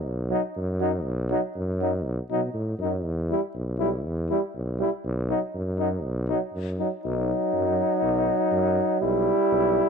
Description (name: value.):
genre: balkan folk, Balkan brass band.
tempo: 121 BPM.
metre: 2/4.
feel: swing 55% on 16ths.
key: unclear.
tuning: A4 = 440 Hz.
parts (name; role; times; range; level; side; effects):
warm tuba; bass; 0.0-9.8 s; B1 to B2; -28 LUFS; equal; tube saturation.
clear trombone; accompaniment; 0.3-9.9 s; D#4 to E4; -28 LUFS; left 10 dB; none.
warm euphonium; accompaniment; 0.3-9.9 s; F#3 to G3; -27 LUFS; right 10 dB; none.
room: light reverb, studio reverb.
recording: 1960s-style stereo with parts hard left and right.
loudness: -23 LUFS.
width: side -6 dB against mid.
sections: 0.0-7.0 A section; 7.0-9.9 B section.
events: none.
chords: 0.0 B; 3.1 Em; 5.0 B; 9.0 Em/B.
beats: | 0.07 0.57 | 1.06 1.56 | 2.06 2.56 | 3.06 3.55 | 4.05 4.55 | 5.04 5.54 | 6.04 6.53 | 7.03 7.53 | 8.02 8.52 | 9.01 9.51.